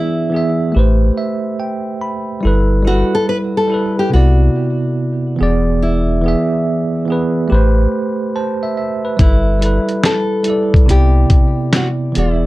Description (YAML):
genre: lo-fi hip hop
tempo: 71 BPM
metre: 4/4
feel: swing 65% on 16ths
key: G major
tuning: A4 = 438 Hz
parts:
  - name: nylon-string guitar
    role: melody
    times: 0.0-12.5 s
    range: E4 to B4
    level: -20 LUFS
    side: left 1 dB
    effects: analog delay
  - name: bell-like tine electric piano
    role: accompaniment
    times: 0.0-12.5 s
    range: C3 to B5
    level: -16 LUFS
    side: right 2 dB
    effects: fast stereo tremolo, cassette tape
  - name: soft dub sub bass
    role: bass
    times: 0.8-12.5 s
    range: E1 to C2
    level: -13 LUFS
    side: equal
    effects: none
  - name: dusty soul sampler-style drum kit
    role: drums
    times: 9.2-12.4 s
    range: hi-hat, kick drum, snare drum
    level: -12 LUFS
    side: equal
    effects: vintage 12-bit sampler grit
room: light reverb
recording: dark, warm production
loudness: -13 LUFS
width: side -18 dB against mid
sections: 0.0-12.5 A section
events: tine electric piano fill 0.7-2.4, 7.9-9.2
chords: 0.0 E7; 0.7 Am9; 2.4 G69; 4.1 Cmaj9; 5.4 E7; 7.5 Am9; 9.2 G69; 10.9 Cmaj9